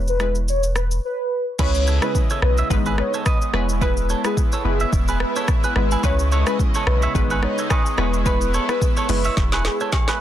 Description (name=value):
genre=afrobeats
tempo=108 BPM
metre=4/4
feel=swing 55% on 16ths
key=E major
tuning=A4 = 440 Hz
part: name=punchy sub bass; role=bass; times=0.0-9.7 s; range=E1 to C#2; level=-21 LUFS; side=equal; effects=none
part: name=warm velvety synth lead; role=melody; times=0.1-9.8 s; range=G#4 to C#5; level=-26 LUFS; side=left 1 dB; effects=chorus, digital delay
part: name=afro-pop drum kit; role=drums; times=0.1-10.2 s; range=crash cymbal, hi-hat, kick drum, rim click, shaker, snare drum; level=-21 LUFS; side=equal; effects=soft clipping on snare
part: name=glassy wavetable pluck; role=accompaniment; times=0.2-9.3 s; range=G#3 to B4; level=-27 LUFS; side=left 2 dB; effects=chorus
part: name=lush unison pad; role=sustained chords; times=1.6-10.2 s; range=C#3 to D#5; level=-28 LUFS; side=left 1 dB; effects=chorus, sidechain pumping
part: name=clean electric guitar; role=riff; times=1.6-10.2 s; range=E4 to E5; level=-27 LUFS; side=right 5 dB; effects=spring reverb, digital delay
part: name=agogo bells and woodblock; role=percussion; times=6.0-10.1 s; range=none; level=-29 LUFS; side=right 2 dB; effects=none
room=light reverb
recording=dense, heavily limited modern master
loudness=-18 LUFS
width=side -11 dB against mid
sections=0.0-1.6 A section; 1.6-10.2 B section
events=break 1.0-1.6; drum fill 9.4-10.2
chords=0.0 E5; 1.6 C#m7; 2.7 G#m; 3.5 E; 6.0 C#m7; 7.1 G#m; 8.0 E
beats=0.48 1.04 | 1.59 2.15 2.70 3.26 | 3.81 4.37 4.93 5.48 | 6.04 6.59 7.15 7.70 | 8.26 8.81 9.37 9.93